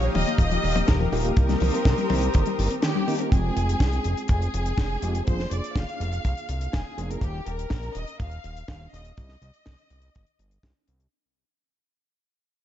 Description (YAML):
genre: italo disco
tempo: 123 BPM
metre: 4/4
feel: straight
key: F minor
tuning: A4 = 440 Hz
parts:
  - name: warm studio violin section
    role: melody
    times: 0.0-10.6 s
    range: G4 to F5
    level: -31 LUFS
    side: left 1 dB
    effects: ping-pong delay
  - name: lush unison pad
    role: sustained chords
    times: 0.0-3.3 s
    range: G4 to Eb6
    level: -32 LUFS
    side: equal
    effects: chorus
  - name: warbly dusty pluck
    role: arpeggios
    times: 0.0-3.3 s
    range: Eb3 to C4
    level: -30 LUFS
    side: left 5 dB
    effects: chorus, ping-pong delay
  - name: mellow tine electric piano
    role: stabs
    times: 0.0-7.2 s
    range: Ab3 to G5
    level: -33 LUFS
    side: right 2 dB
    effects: medium tremolo
  - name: fat analog bass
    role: bass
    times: 0.0-11.1 s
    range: Eb1 to C2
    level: -27 LUFS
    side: equal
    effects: tube saturation
  - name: tight funk drum kit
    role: drums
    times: 0.0-11.1 s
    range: hi-hat, snare drum, toms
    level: -32 LUFS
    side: left 1 dB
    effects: none
  - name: kick drum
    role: drums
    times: 0.4-10.7 s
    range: none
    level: -22 LUFS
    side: equal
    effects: none
room: light reverb, studio reverb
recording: dark, warm production, nothing above 7.7 kHz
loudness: -22 LUFS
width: side -11 dB against mid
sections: 0.0-3.3 A section; 3.3-11.1 B section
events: band accent 2.8; fade-out 3.3-11.1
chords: 0.0 Ebadd9; 1.4 Cm7; 3.3 Fmadd9; 5.3 Bb7/F; 7.2 Ebsus2; 9.2 Cm